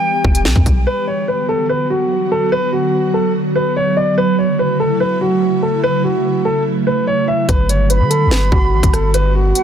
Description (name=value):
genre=hip hop, drill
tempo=145 BPM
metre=4/4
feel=half-time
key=B minor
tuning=A4 = 445 Hz
part: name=silver concert flute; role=second line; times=0.0-0.4, 7.9-9.6 s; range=F#5 to B5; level=-22 LUFS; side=right 3 dB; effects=digital delay
part: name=ethereal airy pad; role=sustained chords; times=0.0-9.6 s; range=C#3 to G4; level=-18 LUFS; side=right 2 dB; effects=ensemble chorus, built-in reverb
part: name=long sustained 808-style bass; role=bass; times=0.2-0.9, 7.5-9.5 s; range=E1 to D3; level=-15 LUFS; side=equal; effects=none
part: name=drill drum kit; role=drums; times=0.2-0.8, 7.5-9.6 s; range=hi-hat, kick drum, rim click, snare drum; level=-15 LUFS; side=equal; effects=none
part: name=dark baby grand piano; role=melody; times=0.9-9.6 s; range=F#4 to E5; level=-17 LUFS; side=left 1 dB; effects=low-pass filter
room=little or no reverb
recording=dense, heavily limited modern master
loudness=-13 LUFS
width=side -9 dB against mid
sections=0.9-9.6 A section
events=break 0.0-0.9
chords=0.0 Em; 0.9 Bm; 4.2 F#m7; 7.5 Gmaj7